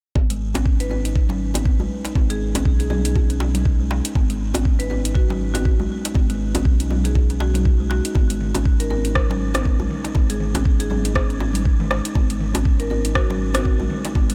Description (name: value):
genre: afro house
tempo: 120 BPM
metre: 4/4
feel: swing 57% on 16ths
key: G# minor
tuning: A4 = 442 Hz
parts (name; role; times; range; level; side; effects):
- warm sub bass; bass; 0.2-14.3 s; G#1 to B1; -26 LUFS; equal; sidechain pumping
- electronic kick drum; drums; 0.2-14.3 s; none; -20 LUFS; equal; none
- congas; percussion; 0.2-14.3 s; none; -32 LUFS; equal; none
- djembe; percussion; 0.2-14.3 s; none; -33 LUFS; equal; none
- buzzing kalimba; arpeggios; 0.3-14.3 s; G#3 to D#4; -30 LUFS; equal; sidechain pumping, delay
- afro-pop drum kit; drums; 0.3-14.3 s; hi-hat, rim click, toms; -30 LUFS; equal; none
- marimba with medium hard mallets; melody; 0.8-13.7 s; F#4 to B4; -34 LUFS; equal; delay
room: little or no reverb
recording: none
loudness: -20 LUFS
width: mono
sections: 0.2-14.3 A section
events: none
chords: 0.2 G#m; 8.2 G#5